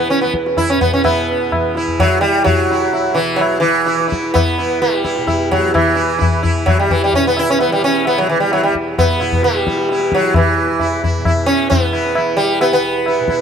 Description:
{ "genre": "indian classical, Hindustani", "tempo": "130 BPM", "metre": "5/4", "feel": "straight", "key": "E raga shivaranjani", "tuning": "A4 = 440 Hz", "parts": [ { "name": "sitar", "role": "melody", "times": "0.0-13.4 s", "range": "E3 to E4", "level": "-14 LUFS", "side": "right 1 dB", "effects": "tape echo" }, { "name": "tanpura", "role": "drone", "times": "0.0-13.4 s", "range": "E2 to E3", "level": "-23 LUFS", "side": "equal", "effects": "none" }, { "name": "tabla", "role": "percussion", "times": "0.1-13.4 s", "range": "none", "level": "-18 LUFS", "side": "left 2 dB", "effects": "none" } ], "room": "light reverb", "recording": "close, detailed microphones", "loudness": "-13 LUFS", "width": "side -7 dB against mid", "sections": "0.0-1.0 A section; 1.0-13.4 B section", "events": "speeding up 0.0-13.4", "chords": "none" }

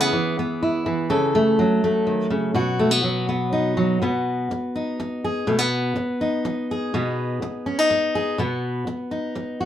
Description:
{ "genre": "folk", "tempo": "123 BPM", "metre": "3/4", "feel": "straight", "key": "unclear", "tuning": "A4 = 440 Hz", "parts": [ { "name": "fingerpicked steel-string acoustic guitar", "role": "solo", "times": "0.0-9.7 s", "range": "B2 to A4", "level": "-20 LUFS", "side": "equal", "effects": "none" } ], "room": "moderate studio ambience, RT60 0.5 s", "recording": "band playing live in one room", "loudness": "-20 LUFS", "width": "side -10 dB against mid", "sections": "0.0-4.0 A section; 4.0-9.7 B section", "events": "none", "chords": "0.0 C#m7 (rootless); 1.1 F#m7/C#; 2.6 B; 4.0 B6" }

